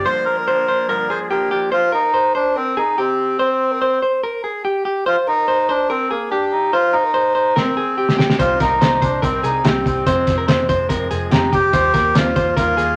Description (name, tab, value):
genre	jangly indie pop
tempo	144 BPM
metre	4/4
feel	straight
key	unclear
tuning	A4 = 440 Hz
part	melodica	melody	0.0-13.0 s	Bb3 to C5	-21 LUFS	equal	none
part	direct-recorded clean electric guitar	accompaniment	0.0-1.7, 8.4-13.0 s	F2 to F4	-30 LUFS	equal	spring reverb
part	direct-recorded clean electric guitar	arpeggios	0.0-13.0 s	G4 to C5	-21 LUFS	equal	none
part	cloth-damped thuddy drum kit	drums	7.6-12.9 s	hi-hat, kick drum, snare drum	-21 LUFS	equal	none
part	vintage muted picked electric bass	bass	8.4-12.9 s	F1 to Eb2	-28 LUFS	equal	none
room	wet studio reverb, RT60 0.8 s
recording	none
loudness	-17 LUFS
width	mono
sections	0.0-1.7 A section; 1.7-13.0 B section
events	break 0.1-1.7; drum fill 7.6-8.4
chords	0.0 Gm7; 1.7 Abmaj9/C; 8.4 Cm; 10.1 Fm; 11.7 Ebadd9